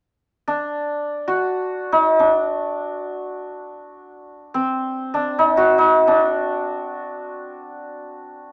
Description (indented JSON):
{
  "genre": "Persian modal ensemble",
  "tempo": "free time",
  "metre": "none",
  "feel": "none",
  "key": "unclear",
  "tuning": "A4 = 440 Hz",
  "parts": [
    { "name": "santur", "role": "solo", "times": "0.5-8.5 s", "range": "C4 to F#4", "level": "-21 LUFS", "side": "equal", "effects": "none" }
  ],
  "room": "moderate studio reverb, RT60 0.6 s",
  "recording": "none",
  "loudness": "-20 LUFS",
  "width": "mono",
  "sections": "0.0-8.5 A section",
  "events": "none",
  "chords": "none"
}